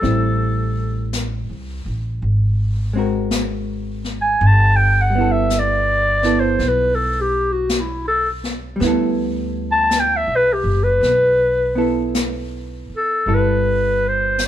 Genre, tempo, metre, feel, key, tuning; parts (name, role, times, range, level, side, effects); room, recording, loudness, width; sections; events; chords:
jazz ballad; 54 BPM; 4/4; swing 67% on 8ths; G major; A4 = 441 Hz
growling clarinet; melody; 0.0-14.4 s; E4 to A5; -17 LUFS; left 1 dB
vintage hollow-body jazz guitar; accompaniment; 0.0-14.5 s; G3 to Bb4; -23 LUFS; right 1 dB
upright bass; bass; 0.0-14.5 s; F#1 to D2; -21 LUFS; equal
jazz brush drum kit; drums; 0.0-14.5 s; brushed snare drum, hi-hat, snare drum; -26 LUFS; left 3 dB
light reverb; band playing live in one room; -16 LUFS; side -11 dB against mid
0.0-13.3 A section; 13.3-14.5 B section
clarinet solo 0.0-13.3
0.0 Am7; 2.2 Ab9; 4.4 G69